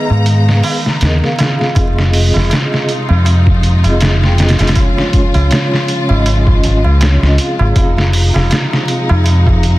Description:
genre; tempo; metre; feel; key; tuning
trip hop; 80 BPM; 4/4; swing 56% on 16ths; F minor; A4 = 441 Hz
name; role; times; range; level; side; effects
felt-muted upright piano; melody; 0.0-1.0 s; none; barely audible; none; none
vibraphone with soft mallets; accompaniment; 0.0-9.8 s; Ab3 to G5; -19 LUFS; equal; tremolo, tape echo
warm studio string section; sustained chords; 0.0-9.8 s; C3 to Bb5; -20 LUFS; left 1 dB; none
deep dub fingered electric bass; bass; 0.1-9.8 s; F1 to Ab2; -11 LUFS; equal; none
tabla; percussion; 0.1-9.6 s; none; -26 LUFS; right 4 dB; none
trip hop sampler-style drum kit; drums; 0.3-9.8 s; hi-hat, kick drum, snare drum; -14 LUFS; equal; studio reverb
room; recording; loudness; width
studio ambience; dense, heavily limited modern master, vinyl crackle; -10 LUFS; side -17 dB against mid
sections
0.0-1.8 A section; 1.8-9.8 B section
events
kick drops out 0.3-1.8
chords
0.0 Abmadd9; 1.8 Fm7; 4.8 Db; 7.8 Fm7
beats
0.26 1.01 | 1.76 2.51 3.26 4.01 | 4.76 5.51 6.26 7.01 | 7.76 8.51 9.26

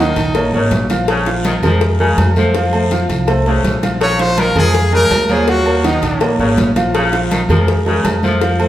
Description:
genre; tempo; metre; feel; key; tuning
latin, salsa; 164 BPM; 4/4; straight; Bb minor; A4 = 443 Hz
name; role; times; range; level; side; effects
brilliant trumpet; melody; 0.0-0.5, 4.0-6.4 s; Eb4 to Db5; -17 LUFS; equal; none
bright saxophone section; second line; 0.0-8.7 s; Db3 to F3; -22 LUFS; left 1 dB; none
clear grand piano; accompaniment; 0.0-8.7 s; Eb3 to Gb5; -16 LUFS; right 1 dB; none
upright bass; bass; 0.0-8.7 s; Ab1 to F2; -18 LUFS; equal; none
agogo bells and timbales; percussion; 0.2-8.7 s; none; -24 LUFS; right 1 dB; none
cowbell; percussion; 0.2-8.6 s; none; -24 LUFS; left 4 dB; none
guiro; percussion; 0.2-8.7 s; none; -32 LUFS; left 4 dB; none
congas; percussion; 0.3-8.7 s; none; -22 LUFS; equal; none
room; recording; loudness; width
wet large studio reverb, RT60 1.4 s; heard from further back in the room; -12 LUFS; side -13 dB against mid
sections
0.0-8.7 A section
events
none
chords
0.0 Ebm7; 1.1 Bbm7; 2.5 F; 4.0 Bbm7; 5.5 Ebm7; 6.9 Bbm7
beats
0.35 0.71 | 1.08 1.45 1.81 2.18 | 2.55 2.91 3.28 3.65 | 4.01 4.38 4.75 5.11 | 5.48 5.85 6.21 6.58 | 6.95 7.31 7.68 8.05 | 8.41

